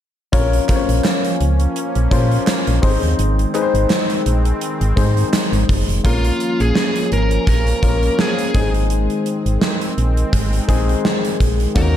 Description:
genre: 1980s-style pop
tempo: 84 BPM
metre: 4/4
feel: swing 55% on 16ths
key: Bb minor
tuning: A4 = 441 Hz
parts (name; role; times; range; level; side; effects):
- warm baby grand piano; accompaniment; 0.3-12.0 s; Ab3 to Db5; -22 LUFS; left 5 dB; none
- sweeping resonant pad; sustained chords; 0.3-12.0 s; Eb3 to Gb4; -25 LUFS; right 1 dB; chorus
- solid FM bass; bass; 0.3-12.0 s; F1 to Bb2; -17 LUFS; equal; none
- gated 80s drum kit; drums; 0.3-11.9 s; hi-hat, kick drum, snare drum; -19 LUFS; right 1 dB; none
- group handclap; percussion; 0.7-5.5 s; none; -38 LUFS; right 6 dB; none
- biting lead guitar; melody; 6.1-12.0 s; F4 to Bb4; -22 LUFS; equal; overdrive, ping-pong delay
room: light reverb, studio ambience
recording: dark, warm production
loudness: -15 LUFS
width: side -11 dB against mid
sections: 0.3-6.0 A section; 6.0-12.0 B section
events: none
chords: 0.3 Bbm; 2.8 Ab; 6.0 Bbm; 8.5 Ab

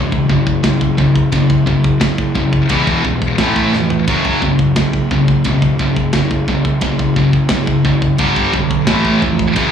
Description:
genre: heavy metal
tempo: 87 BPM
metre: 4/4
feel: straight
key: unclear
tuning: A4 = 440 Hz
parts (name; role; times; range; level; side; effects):
- high-gain distorted guitar; riff; 0.0-9.7 s; E2 to A3; -18 LUFS; left 13 dB; distortion, slapback echo
- high-gain distorted guitar; riff; 0.0-9.7 s; E2 to A3; -15 LUFS; right 4 dB; distortion
- fuzz picked electric bass; bass; 0.0-9.7 s; E1 to B1; -20 LUFS; left 1 dB; overdrive
- tight metal drum kit; drums; 0.1-9.7 s; kick drum, ride cymbal, snare drum, toms; -20 LUFS; left 1 dB; none
room: little or no reverb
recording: live gig heard through the venue's PA, club reverb, small room ambience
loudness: -12 LUFS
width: side -8 dB against mid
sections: 0.0-9.7 A section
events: drum fill 3.7-4.1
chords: 0.0 F#5; 2.7 E5; 3.4 A5; 4.1 F#5; 8.2 G5; 8.9 A5

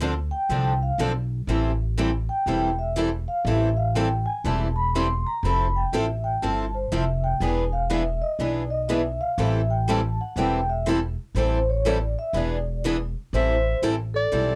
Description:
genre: acoustic string swing (jazz manouche)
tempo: 122 BPM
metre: 4/4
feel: swing 64% on 8ths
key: A minor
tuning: A4 = 440 Hz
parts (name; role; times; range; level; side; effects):
- picked steel-string acoustic guitar; accompaniment; 0.0-14.5 s; D3 to A4; -31 LUFS; equal; none
- picked steel-string acoustic guitar; accompaniment; 0.0-14.5 s; D3 to B4; -30 LUFS; equal; none
- upright bass; bass; 0.0-14.6 s; E1 to D2; -28 LUFS; equal; none
- vibraphone with soft mallets; second line; 0.3-14.6 s; A4 to C6; -29 LUFS; equal; none
- clear clarinet; melody; 13.4-14.6 s; D5 to E5; -27 LUFS; equal; none
room: light reverb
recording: dry, close 1970s-style studio recording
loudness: -24 LUFS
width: mono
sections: 0.0-13.3 A section; 13.3-14.6 B section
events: vibraphone solo 0.0-13.3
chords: 0.0 Dm7; 1.5 Am7; 5.4 Fmaj7; 7.4 E7; 9.4 Am7; 12.3 E7; 13.3 Am7

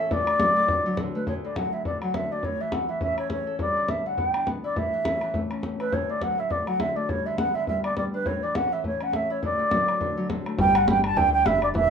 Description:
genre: celtic folk, Celtic reel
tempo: 206 BPM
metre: 4/4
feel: swing 56% on 8ths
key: D major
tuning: A4 = 439 Hz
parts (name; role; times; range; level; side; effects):
- mellow baroque flute; melody; 0.0-11.9 s; B4 to A5; -24 LUFS; right 1 dB; none
- Celtic harp; accompaniment; 0.0-11.9 s; D2 to B4; -30 LUFS; left 2 dB; none
- bodhran; percussion; 0.1-11.8 s; none; -30 LUFS; left 1 dB; none
- deep dub picked electric bass; bass; 10.6-11.9 s; E1 to D2; -30 LUFS; right 1 dB; none
room: wet small room reverb, RT60 0.5 s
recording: minimal, uncompressed stereo recording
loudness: -22 LUFS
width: side -7 dB against mid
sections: 0.0-1.3 A section; 1.3-10.6 A section; 10.6-11.9 B section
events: none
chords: 0.1 D; 2.4 A; 3.6 G6; 4.8 A; 5.9 D; 7.1 G; 8.3 A; 9.4 D; 10.6 G

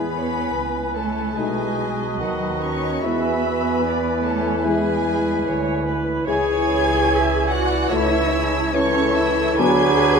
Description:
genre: classical, slow romantic movement for symphony orchestra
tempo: 73 BPM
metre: 4/4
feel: rubato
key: unclear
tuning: A4 = 440 Hz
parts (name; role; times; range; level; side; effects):
- warm chamber violin section; melody; 0.0-10.2 s; F#5 to G#6; -30 LUFS; left 4 dB; none
- mellow hollow small flute group; second line; 0.0-10.2 s; G#5 to B5; -29 LUFS; right 2 dB; none
- rich chamber violin section; second line; 0.0-10.2 s; F#4 to G#5; -28 LUFS; left 4 dB; none
- warm clarinet; second line; 0.0-10.2 s; D4 to F#4; -28 LUFS; left 2 dB; none
- warm oboe; second line; 0.0-10.2 s; B4 to D5; -30 LUFS; right 2 dB; none
- mellow bassoon; accompaniment; 0.0-10.2 s; D#3 to F#3; -25 LUFS; equal; none
- rich chamber viola section; accompaniment; 0.0-10.2 s; G#4 to E5; -28 LUFS; right 3 dB; none
- warm French horn section; sustained chords; 0.0-9.9 s; F#3 to E4; -26 LUFS; left 5 dB; none
- clear chamber double bass section; bass; 0.0-10.2 s; B1 to E2; -27 LUFS; right 3 dB; none
- rich chamber cello section; bass; 0.0-10.2 s; F#3 to G#4; -26 LUFS; right 3 dB; none
room: wet scoring stage reverb, RT60 1.8 s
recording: none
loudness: -18 LUFS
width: side -5 dB against mid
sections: 0.0-10.2 A section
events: none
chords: 0.0 E; 1.4 B7; 3.0 E; 6.3 C#m; 7.9 A/C#; 9.6 D6

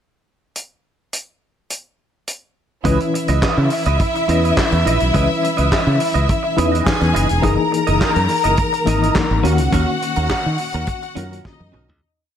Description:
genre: disco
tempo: 105 BPM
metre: 4/4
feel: straight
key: C# dorian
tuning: A4 = 441 Hz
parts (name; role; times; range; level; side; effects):
- warm soul drum kit; drums; 0.6-12.0 s; handclaps, hi-hat, kick drum, snare drum, toms; -22 LUFS; equal; none
- clean electric guitar; accompaniment; 2.8-11.9 s; C#4 to D#5; -24 LUFS; right 10 dB; ensemble chorus
- reed electric piano; accompaniment; 2.8-12.0 s; D#3 to B4; -22 LUFS; left 4 dB; fast tremolo
- clear studio string section; second line; 2.9-12.0 s; D#4 to A#5; -20 LUFS; left 1 dB; none
- modern bright fingered electric bass; bass; 2.9-12.0 s; E1 to D#3; -18 LUFS; equal; none
room: light reverb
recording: none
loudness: -15 LUFS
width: side -9 dB against mid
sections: 0.6-2.9 pickup bar; 2.9-12.0 verse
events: fade-out 9.7-12.0; drum fill 11.4-12.0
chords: 0.6 N.C.; 2.9 C#m9; 7.4 F#13; 9.4 D#m7

